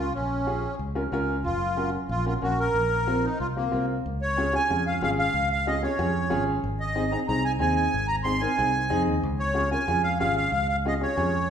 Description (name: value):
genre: latin, cumbia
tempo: 185 BPM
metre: 4/4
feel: straight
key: unclear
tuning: A4 = 440 Hz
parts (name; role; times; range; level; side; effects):
- accordion; melody; 0.0-11.5 s; Bb3 to C6; -26 LUFS; right 1 dB; light tremolo tuning
- clear upright piano; accompaniment; 0.0-11.3 s; C4 to Bb4; -29 LUFS; left 1 dB; none
- fingered electric bass; bass; 0.0-11.5 s; Gb1 to F2; -29 LUFS; equal; none
room: wet recital hall reverb, RT60 1.4 s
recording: recorded in a church or concert hall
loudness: -23 LUFS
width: side -8 dB against mid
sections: 0.0-4.0 A section; 4.0-11.5 B section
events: none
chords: 0.0 Bbm; 1.4 Gb; 2.7 Bbsus2; 4.0 Db; 6.6 Ab; 9.2 Db